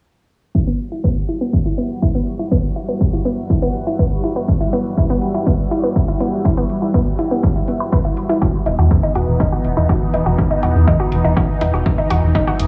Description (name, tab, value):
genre	melodic techno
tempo	122 BPM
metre	4/4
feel	straight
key	E harmonic minor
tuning	A4 = 440 Hz
part	lush unison pad	sustained chords	0.8-12.7 s	E3 to F#4	-25 LUFS	equal	chorus, phaser, sidechain pumping
part	analog pluck	arpeggios	0.5-12.5 s	B3 to B4	-24 LUFS	equal	chorus, cassette tape, sidechain pumping, dub echo
part	electronic kick drum	drums	0.5-12.4 s	none	-20 LUFS	equal	none
part	electronic hi-hat	drums	0.8-12.7 s	none	-40 LUFS	equal	overdrive, sidechain pumping on hats
part	plucky analog bass	bass	8.4-12.7 s	E1 to E2	-19 LUFS	equal	sidechain pumping
part	riser	sound effects	12.3-12.7 s	none	barely audible	none	none
room	light reverb, digital ambience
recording	low-pass filter, small room reverb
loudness	-17 LUFS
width	mono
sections	0.5-12.7 A section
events	filter sweep on synth arpeggio sound 0.5-12.7; filter sweep 0.5-12.7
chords	0.5 Emadd9; 8.4 B/E